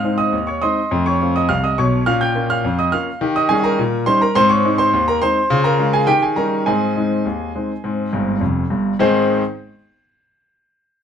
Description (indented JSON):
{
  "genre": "ragtime piano",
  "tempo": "104 BPM",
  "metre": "2/4",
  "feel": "straight",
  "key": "Ab major",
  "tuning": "A4 = 443 Hz",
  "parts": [
    { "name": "clear grand piano", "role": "solo", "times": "0.0-9.4 s", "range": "F1 to G6", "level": "-15 LUFS", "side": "equal", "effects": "none" }
  ],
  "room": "moderate studio reverb, RT60 0.7 s",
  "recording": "band playing live in one room",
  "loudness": "-15 LUFS",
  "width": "side -8 dB against mid",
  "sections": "0.0-9.0 A section; 9.0-10.1 B section",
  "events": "grand piano fill 8.1-9.0",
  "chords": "0.0 Ab; 0.9 F7; 2.1 Bbm; 3.2 Eb7; 4.4 Ab; 5.5 Db; 6.1 Eb7; 6.7 Ab",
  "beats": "0.33 | 0.91 1.48 | 2.06 2.63 | 3.21 3.78 | 4.36 4.93 | 5.50 6.08 | 6.66 7.25 | 7.83 8.41 | 8.99"
}